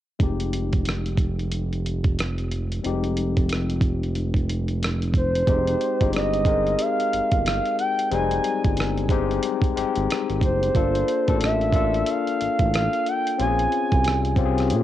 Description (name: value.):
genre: R&B, neo-soul.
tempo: 91 BPM.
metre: 4/4.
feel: swing 61% on 16ths.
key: F dorian.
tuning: A4 = 436 Hz.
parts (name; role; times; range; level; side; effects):
barky tine electric piano; accompaniment; 0.2-14.8 s; G3 to Bb4; -26 LUFS; left 8 dB; auto-pan, cassette tape.
smooth synth bass; bass; 0.2-14.8 s; F1 to Bb2; -25 LUFS; right 1 dB; none.
dusty soul sampler-style drum kit; drums; 0.2-14.8 s; hi-hat, kick drum, rim click; -24 LUFS; right 1 dB; cassette tape.
gliding portamento lead; melody; 5.2-14.3 s; C5 to Ab5; -24 LUFS; right 2 dB; chorus, phaser, cassette tape.
room: little or no reverb.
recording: home recording on cassette.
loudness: -20 LUFS.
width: side -12 dB against mid.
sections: 0.2-5.5 A section; 5.5-14.8 B section.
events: none.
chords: 0.2 Fm9; 10.7 Gm9; 13.4 Bbm9.